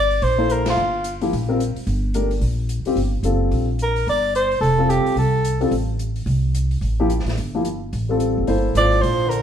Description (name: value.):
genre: modal jazz.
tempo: 218 BPM.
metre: 4/4.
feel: swing 60% on 8ths.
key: G dorian.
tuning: A4 = 439 Hz.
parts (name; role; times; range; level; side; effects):
breathy soprano saxophone; melody; 0.0-1.2, 3.8-5.7, 8.8-9.4 s; F4 to D5; -19 LUFS; right 1 dB; plate reverb.
upright bass; bass; 0.0-9.4 s; F1 to C2; -21 LUFS; equal; none.
open jazz drum kit; drums; 0.1-9.4 s; hi-hat, ride cymbal, snare drum; -36 LUFS; left 1 dB; none.
warm baby grand piano; accompaniment; 0.4-9.2 s; F3 to C5; -22 LUFS; left 2 dB; none.
breathy tenor saxophone; second line; 8.8-9.4 s; D3 to F3; -24 LUFS; right 2 dB; none.
room: wet studio reverb, RT60 0.8 s.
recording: heard from further back in the room.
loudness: -18 LUFS.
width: side -9 dB against mid.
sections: 0.0-9.4 A section.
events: band accent 0.6.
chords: 0.0 Gm7; 4.1 F; 8.5 Gm7.